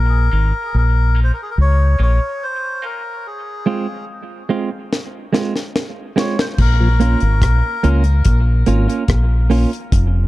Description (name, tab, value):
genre	dub reggae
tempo	72 BPM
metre	4/4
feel	straight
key	Bb minor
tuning	A4 = 441 Hz
part	melodica	melody	0.0-7.9 s	Ab4 to Db5	-24 LUFS	left 2 dB	dub echo
part	deep dub fingered electric bass	bass	0.0-10.3 s	F1 to Db2	-13 LUFS	equal	none
part	clean electric guitar	accompaniment	0.3-9.7 s	Ab3 to F4	-22 LUFS	right 4 dB	high-pass filter, dub echo
part	deep reggae drum kit	drums	4.9-10.1 s	crash cymbal, hi-hat, kick drum, rim click, snare drum	-18 LUFS	equal	none
part	mellow tonewheel organ	accompaniment	6.8-6.9 s	Bb2 to F3	-23 LUFS	left 2 dB	overdrive, chorus vibrato, slow rotary speaker
room	light reverb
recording	dark, warm production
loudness	-14 LUFS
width	side -17 dB against mid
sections	0.0-6.6 A section; 6.6-10.3 B section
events	break 3.2-6.6; drum fill 4.9-6.6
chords	0.0 Bbm; 3.2 Fm; 6.6 Bbm